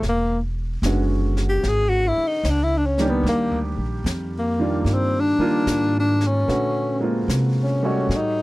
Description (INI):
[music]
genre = jazz ballad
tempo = 74 BPM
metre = 4/4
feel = swing 66% on 8ths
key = unclear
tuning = A4 = 440 Hz
[part]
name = warm tenor saxophone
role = melody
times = 0.0-8.4 s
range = Bb3 to G#4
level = -21 LUFS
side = left 1 dB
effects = none
[part]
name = warm upright piano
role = accompaniment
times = 0.0-8.4 s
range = D3 to Eb5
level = -25 LUFS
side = right 2 dB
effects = none
[part]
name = upright bass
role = bass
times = 0.0-8.4 s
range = E1 to C3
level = -23 LUFS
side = equal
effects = none
[part]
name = jazz brush drum kit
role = drums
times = 0.0-8.4 s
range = brushed snare drum, hi-hat, snare drum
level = -31 LUFS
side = left 1 dB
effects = none
[sound]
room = little or no reverb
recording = dry, close 1970s-style studio recording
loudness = -19 LUFS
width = side -19 dB against mid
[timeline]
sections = 0.0-8.4 A section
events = tenor saxophone solo 0.0-8.4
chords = 0.0 E13; 3.3 Ebmaj9; 6.5 Bbm9